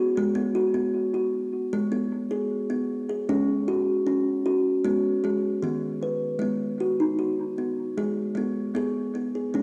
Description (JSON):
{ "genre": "world meditative, meditative tuned percussion", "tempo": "77 BPM", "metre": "4/4", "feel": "straight", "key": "G# minor pentatonic", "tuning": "A4 = 441 Hz", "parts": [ { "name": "kalimba", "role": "solo", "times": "0.0-9.6 s", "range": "D#3 to B4", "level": "-26 LUFS", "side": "equal", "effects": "cassette tape, analog delay" } ], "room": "wet lush hall reverb, RT60 2.3 s", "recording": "home recording on cassette", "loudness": "-26 LUFS", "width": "mono", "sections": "0.0-4.9 A section; 4.9-9.6 B section", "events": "none", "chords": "0.0 B5/G#; 1.7 G#m; 3.3 F#5/G#; 4.9 G#m; 6.4 B/G#; 8.0 G#m" }